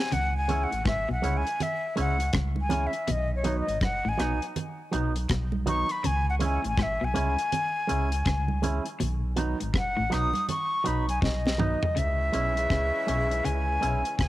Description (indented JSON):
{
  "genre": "roots reggae",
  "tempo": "81 BPM",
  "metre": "4/4",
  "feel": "swing 62% on 16ths",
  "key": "C# minor",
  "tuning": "A4 = 439 Hz",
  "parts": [
    { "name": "breathy concert flute", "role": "melody", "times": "0.0-14.3 s", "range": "C#5 to D#6", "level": "-29 LUFS", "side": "left 2 dB", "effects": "cassette tape, tape echo" },
    { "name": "electric guitar at the edge of break-up", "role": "riff", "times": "0.1-14.3 s", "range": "F#2 to C#3", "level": "-33 LUFS", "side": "left 3 dB", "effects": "tremolo" },
    { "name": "soft dub sub bass", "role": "bass", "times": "0.1-14.3 s", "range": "F#1 to C#2", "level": "-29 LUFS", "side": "equal", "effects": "transformer saturation" },
    { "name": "deep reggae drum kit", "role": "drums", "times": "0.1-14.3 s", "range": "hi-hat, kick drum, rim click, snare drum, toms", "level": "-30 LUFS", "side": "equal", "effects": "none" },
    { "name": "congas", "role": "percussion", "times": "0.1-12.0 s", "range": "none", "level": "-36 LUFS", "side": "right 6 dB", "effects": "none" },
    { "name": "electric guitar with an envelope filter", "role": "accompaniment", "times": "0.5-14.0 s", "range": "F#3 to E4", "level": "-33 LUFS", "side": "right 4 dB", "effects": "tape echo" },
    { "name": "mellow horn section", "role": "second line", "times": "12.0-14.3 s", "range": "C#3 to C#4", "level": "-35 LUFS", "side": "right 2 dB", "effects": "tape echo" }
  ],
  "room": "light reverb, small room ambience",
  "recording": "home recording on cassette",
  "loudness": "-24 LUFS",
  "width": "side -15 dB against mid",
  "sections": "0.0-12.0 A section; 12.0-14.3 B section",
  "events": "flute solo 0.0-12.0; drum fill 11.2-12.0",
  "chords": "0.1 C#m; 3.1 B; 6.0 C#m; 9.0 B; 12.0 C#m"
}